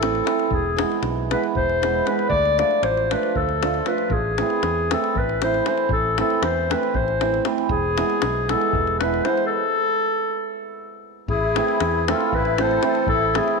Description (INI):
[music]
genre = balkan folk, Balkan wedding band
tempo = 234 BPM (eighths)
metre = 7/8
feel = straight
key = A harmonic minor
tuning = A4 = 440 Hz
[part]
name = mellow clarinet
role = melody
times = 0.0-13.6 s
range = G#4 to D5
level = -22 LUFS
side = left 4 dB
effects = none
[part]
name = hammered dulcimer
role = accompaniment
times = 0.0-13.6 s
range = E3 to F4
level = -24 LUFS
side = right 12 dB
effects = none
[part]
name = fingered electric bass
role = bass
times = 0.0-13.4 s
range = E1 to E2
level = -28 LUFS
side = equal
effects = none
[part]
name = davul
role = percussion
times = 0.0-13.5 s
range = none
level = -28 LUFS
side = left 5 dB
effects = none
[part]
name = musette accordion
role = second line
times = 11.3-13.6 s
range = E4 to A4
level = -26 LUFS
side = left 6 dB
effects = none
[sound]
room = wet echo chamber reverb, RT60 2.1 s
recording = 1960s-style stereo with parts hard left and right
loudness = -19 LUFS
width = side -4 dB against mid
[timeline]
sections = 0.0-11.3 A section; 11.3-13.6 A section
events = stop 9.5-11.3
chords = 0.0 Am; 0.5 E; 2.3 Dm; 4.1 Am; 7.7 E; 9.5 N.C.; 11.3 Am